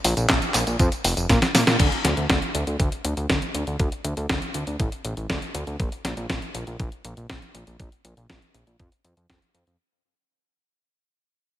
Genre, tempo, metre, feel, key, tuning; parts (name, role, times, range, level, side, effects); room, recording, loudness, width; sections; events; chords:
italo disco; 120 BPM; 4/4; straight; A4 = 440 Hz
fat analog bass; bass; 0.0-9.8 s; F1 to Bb2; -26 LUFS; equal
detuned 8-bit digital drum machine; drums; 0.0-9.8 s; crash cymbal, handclaps, hi-hat, snare drum, tambourine; -23 LUFS; equal; gated reverb
electronic kick drum; drums; 0.3-9.4 s; -25 LUFS; equal
light reverb; -21 LUFS; side -13 dB against mid
0.0-1.8 A section; 1.8-9.8 B section
drum fill 1.3-1.8; band accent 1.7; fade-out 1.8-9.8